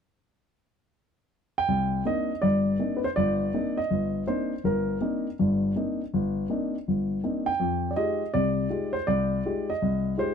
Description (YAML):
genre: solo jazz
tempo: 162 BPM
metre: 4/4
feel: swing 65% on 8ths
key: C minor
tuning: A4 = 442 Hz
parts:
  - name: dark baby grand piano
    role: solo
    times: 1.6-10.3 s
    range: G1 to G5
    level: -24 LUFS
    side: equal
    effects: none
room: light reverb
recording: dark, warm production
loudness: -24 LUFS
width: side -7 dB against mid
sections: 0.2-1.7 A section; 1.7-10.3 B section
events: none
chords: 0.2 N.C.; 1.7 Cm9; 7.6 Fm9